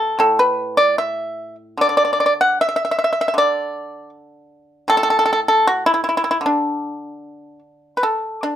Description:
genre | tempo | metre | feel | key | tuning
chinese traditional, Chinese solo plucked strings | 77 BPM | 2/4 | rubato | D gong mode | A4 = 441 Hz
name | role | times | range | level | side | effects
pipa | solo | 0.0-8.6 s | A2 to F#5 | -16 LUFS | equal | none
room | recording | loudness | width
moderate studio reverb, RT60 0.6 s | rough home demo mix | -15 LUFS | side -10 dB against mid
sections
0.0-8.0 A section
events
none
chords
none

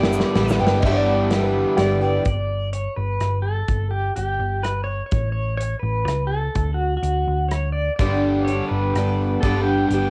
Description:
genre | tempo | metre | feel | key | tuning
folk rock and heartland rock | 125 BPM | 3/4 | straight | G lydian | A4 = 437 Hz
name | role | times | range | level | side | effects
pedal steel guitar | melody | 0.0-10.1 s | F#4 to D5 | -28 LUFS | equal | cassette tape
picked twelve-string acoustic guitar | accompaniment | 0.0-2.3, 8.0-10.1 s | G2 to G4 | -24 LUFS | equal | cassette tape
hand-pumped harmonium | sustained chords | 0.0-2.3 s | G3 to E4 | -30 LUFS | equal | cassette tape
crunchy overdriven guitar | riff | 0.0-2.3, 8.0-10.1 s | G2 to G4 | -29 LUFS | equal | spring reverb, cassette tape
hollow-body short-scale picked electric bass | bass | 0.0-10.1 s | G1 to D2 | -26 LUFS | equal | none
natural country drum kit | drums | 0.0-10.0 s | crash cymbal, hi-hat, kick drum, rim click, snare drum | -26 LUFS | equal | cassette tape
egg shaker | percussion | 0.1-0.6 s | none | -45 LUFS | equal | none
warm upright piano | second line | 0.8-2.1 s | G4 to E5 | -27 LUFS | equal | cassette tape
room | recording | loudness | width
light reverb | home recording on cassette | -21 LUFS | mono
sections
0.8-2.3 A section; 2.3-10.1 B section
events
drum fill 0.0-0.8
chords
0.0 G6; 2.3 G; 5.1 A; 6.6 D; 8.0 G

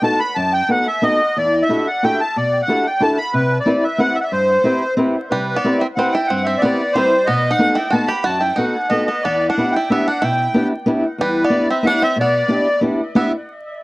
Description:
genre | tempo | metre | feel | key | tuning
musette waltz | 183 BPM | 3/4 | rubato | E minor | A4 = 437 Hz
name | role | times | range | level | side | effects
accordion | melody | 0.0-13.3 s | B4 to B5 | -18 LUFS | equal | light tremolo tuning, analog delay
fingerpicked old ladder-braced acoustic guitar | accompaniment | 0.0-13.3 s | E2 to B4 | -18 LUFS | equal | none
bluegrass banjo | second line | 5.3-13.3 s | G3 to G4 | -23 LUFS | right 2 dB | none
room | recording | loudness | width
moderate small room reverb, RT60 0.5 s | worn, warbling old tape, cassette tape, vinyl crackle, warbly pitch drift | -15 LUFS | side -20 dB against mid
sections
0.0-13.2 A section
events
none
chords
0.0 B7; 1.4 Em11; 3.3 Cmaj7; 7.3 B7; 9.2 Em7

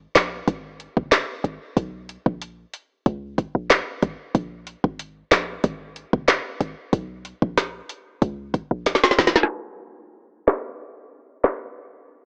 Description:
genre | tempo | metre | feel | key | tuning
dancehall | 93 BPM | 4/4 | straight | unclear | A4 = 440 Hz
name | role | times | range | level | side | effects
short 808-style bass | bass | 0.0-9.3 s | F#1 to C#2 | -28 LUFS | equal | none
afro-pop drum kit | drums | 0.2-11.6 s | handclaps, hi-hat, kick drum, rim click, snare drum | -21 LUFS | equal | vintage 12-bit sampler grit
room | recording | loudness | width
light reverb | worn, warbling old tape, cassette tape, warbly pitch drift, low-pass filter, small speaker sound | -23 LUFS | mono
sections
0.0-9.5 A section; 9.5-12.2 B section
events
drum fill 8.9-9.5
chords
none

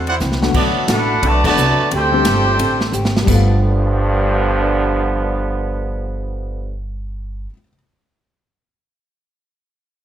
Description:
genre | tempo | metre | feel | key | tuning
jazz, big band swing | 176 BPM | 4/4 | swing 62% on 8ths | G mixolydian | A4 = 440 Hz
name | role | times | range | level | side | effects
clear trombone section | second line | 0.0-6.8 s | G2 to G4 | -20 LUFS | right 2 dB | none
archtop guitar, miked and amplified | accompaniment | 0.0-7.5 s | B2 to A4 | -27 LUFS | left 3 dB | none
upright bass | bass | 0.0-7.5 s | G1 to E2 | -19 LUFS | equal | none
swinging big-band drum kit | drums | 0.1-3.4 s | crash cymbal, hi-hat, kick drum, ride cymbal, snare drum, splash cymbal | -20 LUFS | right 1 dB | none
warm baby grand piano | accompaniment | 0.4-7.7 s | G2 to A6 | -23 LUFS | left 7 dB | none
bright trumpet section | melody | 0.6-3.0 s | B3 to A5 | -17 LUFS | equal | none
room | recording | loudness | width
light reverb | none | -14 LUFS | side -10 dB against mid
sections
0.6-3.3 A section; 3.3-6.0 B section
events
drum fill 0.2-0.6, 2.9-3.3; band accent 1.4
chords
0.0 D9; 0.6 Bm7; 1.9 D7sus4; 3.3 G9

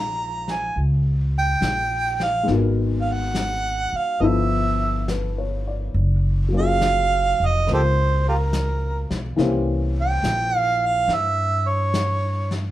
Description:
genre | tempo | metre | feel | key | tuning
jazz ballad | 70 BPM | 4/4 | swing 67% on 8ths | unclear | A4 = 439 Hz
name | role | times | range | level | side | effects
mellow harmonica | melody | 0.0-12.5 s | F4 to Bb5 | -22 LUFS | right 3 dB | none
warm upright piano | accompaniment | 0.0-12.7 s | E3 to D5 | -26 LUFS | left 4 dB | none
upright bass | bass | 0.0-12.7 s | F1 to G2 | -22 LUFS | equal | none
vintage brush drum kit | drums | 0.5-12.7 s | brushed snare drum, hi-hat, snare drum | -31 LUFS | left 2 dB | none
room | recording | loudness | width
light reverb | dark, warm production | -19 LUFS | side -14 dB against mid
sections
0.0-12.7 A section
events
none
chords
0.0 Bbm11; 2.5 Abm7; 4.2 G13; 5.9 Gbmaj9; 9.4 C7b9

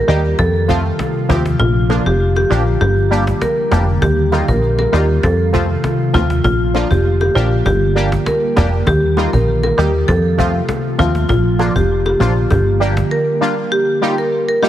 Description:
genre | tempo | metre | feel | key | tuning
dancehall | 99 BPM | 4/4 | straight | Bb major | A4 = 441 Hz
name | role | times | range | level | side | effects
marimba with medium mallets | melody | 0.0-14.7 s | F4 to Bb4 | -18 LUFS | equal | digital delay
glassy FM pad | sustained chords | 0.0-13.7 s | C3 to G4 | -22 LUFS | right 1 dB | ensemble chorus, built-in reverb
plucky analog bass | bass | 0.0-13.0 s | F1 to F2 | -16 LUFS | equal | none
synth brass stab | accompaniment | 0.1-14.7 s | F3 to G4 | -21 LUFS | right 1 dB | chorus, phaser
cajon | drums | 0.1-13.1 s | none | -22 LUFS | equal | none
bongos | percussion | 0.4-12.7 s | none | -28 LUFS | left 5 dB | none
room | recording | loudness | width
light reverb, studio ambience | heavily compressed radio sound, multiband compression | -13 LUFS | side -12 dB against mid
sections
0.0-13.7 A section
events
kick muted 1.6-4.0; break 13.1-13.7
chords
0.4 F; 1.6 Bb; 4.0 Ebadd9; 5.2 F; 6.4 Bb; 8.9 Ebadd9; 10.1 F; 11.3 Bb; 12.5 Gm; 13.7 Ebadd9

